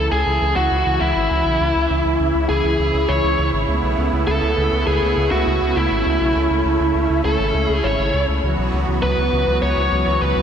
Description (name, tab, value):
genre	synthwave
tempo	101 BPM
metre	4/4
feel	straight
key	unclear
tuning	A4 = 440 Hz
part	biting lead guitar	melody	0.0-10.4 s	E4 to C#5	-19 LUFS	equal	overdrive, shimmer reverb, digital delay
part	brassy analog pad	sustained chords	0.0-10.4 s	C#3 to F#4	-22 LUFS	right 1 dB	chorus, shimmer reverb
part	round analog bass	bass	0.0-10.4 s	G#1 to C#2	-21 LUFS	equal	none
room	wet lush hall reverb, RT60 2.7 s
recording	big arena sound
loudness	-16 LUFS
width	side -8 dB against mid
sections	0.0-10.4 A section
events	none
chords	0.0 C#m; 3.7 Aadd9; 8.4 Esus2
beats	0.12 0.71 | 1.30 1.90 2.49 3.09 | 3.68 4.27 4.87 5.46 | 6.06 6.65 7.24 7.84 | 8.43 9.03 9.62 10.21